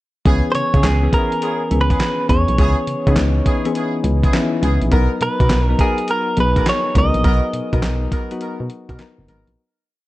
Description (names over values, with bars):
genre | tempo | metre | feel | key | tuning
R&B, new jack swing | 103 BPM | 4/4 | swing 66% on 16ths | C# dorian | A4 = 440 Hz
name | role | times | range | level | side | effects
clear horn section | stabs | 0.2-9.5 s | B3 to A#4 | -28 LUFS | right 1 dB | none
soft electric-piano-like synth keys | accompaniment | 0.3-9.6 s | E3 to A#4 | -22 LUFS | left 3 dB | chorus, tremolo
solid FM bass | bass | 0.3-9.6 s | F#1 to C#3 | -18 LUFS | equal | none
dusty soul sampler-style drum kit | drums | 0.3-9.6 s | handclaps, hi-hat, kick drum, snare drum | -18 LUFS | equal | vintage 12-bit sampler grit, gated reverb
direct-recorded clean electric guitar | melody | 0.5-9.3 s | G#4 to D#5 | -21 LUFS | right 1 dB | none
room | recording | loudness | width
little or no reverb | none | -15 LUFS | side -17 dB against mid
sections
0.3-9.6 verse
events
fade-out 7.2-9.6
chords
0.3 C#m7; 4.9 Bmaj7